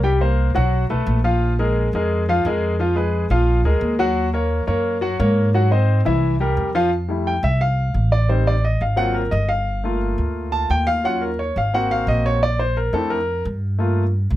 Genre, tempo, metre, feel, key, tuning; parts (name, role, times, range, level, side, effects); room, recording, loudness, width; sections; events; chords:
Afro-Cuban jazz; 174 BPM; 4/4; straight; F major from 6.9 s; A4 = 440 Hz
clear grand piano; accompaniment; 0.0-14.0 s; Fb3 to A5; -20 LUFS; left 1 dB
upright bass; bass; 0.0-14.4 s; G1 to Ab2; -20 LUFS; equal
light reverb; close, detailed microphones; -17 LUFS; side -14 dB against mid
0.0-6.9 A section; 6.9-14.4 B section
grand piano solo 6.9-14.4
0.0 C5; 0.7 Cb5; 1.4 Bb5; 2.8 Fdim; 3.5 Bb7; 4.2 Ebm7; 5.5 Ab7; 6.2 C7; 6.9 Fmaj9; 8.3 Am7b5; 9.0 Ab13; 9.7 Gm7; 11.0 Ebm7; 11.7 Ab9; 12.4 Bbmaj9#11; 13.8 Gm9